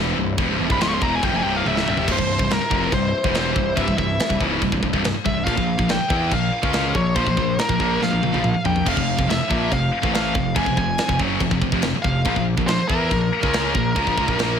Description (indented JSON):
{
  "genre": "heavy metal",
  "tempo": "141 BPM",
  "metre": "4/4",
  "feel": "straight",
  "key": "C phrygian dominant",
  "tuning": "A4 = 441 Hz",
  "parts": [
    { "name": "warm chamber string section", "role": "sustained chords", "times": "0.0-14.6 s", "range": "E3 to C5", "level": "-34 LUFS", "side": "left 1 dB", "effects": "none" },
    { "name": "high-gain distorted guitar", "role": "riff", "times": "0.0-14.6 s", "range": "C2 to E4", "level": "-24 LUFS", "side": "left 11 dB", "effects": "distortion" },
    { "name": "scooped high-gain guitar", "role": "riff", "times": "0.0-14.6 s", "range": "C2 to E4", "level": "-25 LUFS", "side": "right 12 dB", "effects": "distortion" },
    { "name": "fuzz picked electric bass", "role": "bass", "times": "0.0-14.6 s", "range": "C1 to E2", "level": "-26 LUFS", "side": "equal", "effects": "overdrive" },
    { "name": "tight metal drum kit", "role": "drums", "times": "0.4-14.5 s", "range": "china cymbal, crash cymbal, kick drum, snare drum, toms", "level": "-24 LUFS", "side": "equal", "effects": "none" },
    { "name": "high-gain lead guitar", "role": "melody", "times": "0.7-14.6 s", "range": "Bb4 to Db6", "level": "-24 LUFS", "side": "equal", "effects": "distortion, digital delay" }
  ],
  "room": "light reverb",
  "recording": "none",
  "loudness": "-18 LUFS",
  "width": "side -7 dB against mid",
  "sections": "0.0-2.1 A section; 2.1-14.6 B section",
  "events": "lead electric guitar solo 0.0-2.1; drum fill 1.7-2.1, 8.0-8.9",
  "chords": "0.0 C; 5.5 Bb5; 8.9 F5; 12.3 Bb5"
}